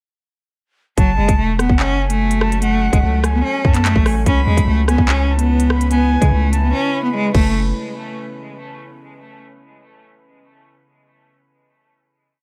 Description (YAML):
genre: hip hop, drill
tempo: 146 BPM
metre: 4/4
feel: half-time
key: F# minor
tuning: A4 = 441 Hz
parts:
  - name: clear cello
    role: melody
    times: 1.0-7.5 s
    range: F#3 to C#4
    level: -21 LUFS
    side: equal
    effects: dub echo
  - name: reedy silver concert flute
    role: second line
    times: 1.0-7.5 s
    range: F#5 to B5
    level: -28 LUFS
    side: equal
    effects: dub echo
  - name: deep dark ambient pad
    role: sustained chords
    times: 2.1-7.5 s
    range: C#3 to B4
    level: -33 LUFS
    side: equal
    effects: chorus, built-in reverb
  - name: long sustained 808-style bass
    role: bass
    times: 1.0-7.7 s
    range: E1 to C#3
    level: -20 LUFS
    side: equal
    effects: none
  - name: drill drum kit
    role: drums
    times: 1.0-7.4 s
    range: crash cymbal, handclaps, hi-hat, kick drum, rim click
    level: -20 LUFS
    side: equal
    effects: none
room: digital ambience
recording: echo-heavy mix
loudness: -16 LUFS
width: mono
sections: 1.0-7.5 hook; 7.5-9.2 final hit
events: drums muted 6.7-7.5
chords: 1.0 F#madd9; 4.3 C#m7; 7.3 F#madd9; 7.5 N.C.